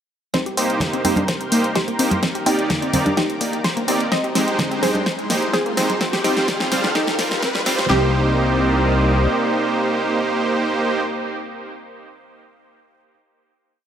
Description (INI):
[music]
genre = progressive house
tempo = 127 BPM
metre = 4/4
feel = straight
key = C minor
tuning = A4 = 440 Hz
[part]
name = wide unison pluck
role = melody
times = 0.3-11.0 s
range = C4 to Eb5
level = -25 LUFS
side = equal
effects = sidechain pumping, tape echo
[part]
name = lush unison pad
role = sustained chords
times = 0.8-11.0 s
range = Ab3 to F6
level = -28 LUFS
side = left 1 dB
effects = chorus, phaser, sidechain pumping
[part]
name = wide unison pluck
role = arpeggios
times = 0.3-8.1 s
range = G3 to C5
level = -25 LUFS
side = left 1 dB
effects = sidechain pumping, tape echo
[part]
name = fat analog bass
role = bass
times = 0.3-9.3 s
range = F1 to Eb2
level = -26 LUFS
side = left 1 dB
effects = sidechain pumping, high-pass filter
[part]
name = big-room dance drum kit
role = drums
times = 0.3-7.9 s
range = hi-hat, snare drum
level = -24 LUFS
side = left 1 dB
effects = sidechain pumping on hats
[part]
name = deep house drum kit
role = drums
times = 0.3-8.0 s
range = kick drum, snare drum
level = -28 LUFS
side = left 1 dB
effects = high-pass filter on kick, high-pass filter on snare
[part]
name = riser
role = sound effects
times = 2.1-7.9 s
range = none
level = -30 LUFS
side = equal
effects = none
[part]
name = soft supersaw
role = stabs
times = 0.6-11.0 s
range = G3 to D5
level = -22 LUFS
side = right 2 dB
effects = sidechain pumping, tape echo
[part]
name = congas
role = percussion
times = 0.8-6.9 s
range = none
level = -26 LUFS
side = right 1 dB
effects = sidechain pumping on perc
[sound]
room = moderate lush hall reverb, RT60 2.3 s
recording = high-pass filter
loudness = -17 LUFS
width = side -9 dB against mid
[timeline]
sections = 0.3-7.9 build; 7.9-11.7 final chord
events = build-up 0.3-7.9; drum fill 0.3-7.9; filter sweep on synth pluck 0.3-7.9; riser 2.1-7.9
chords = 0.3 Cm7; 2.2 Ebmaj7; 4.1 Abmaj7; 6.0 Fsus2; 7.9 Cm7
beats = | 0.34 0.81 1.28 1.76 | 2.23 2.70 3.17 3.65 | 4.12 4.59 5.06 5.54 | 6.01 6.48 6.95 7.42 | 7.90 8.37 8.84 9.31 | 9.79 10.26 10.73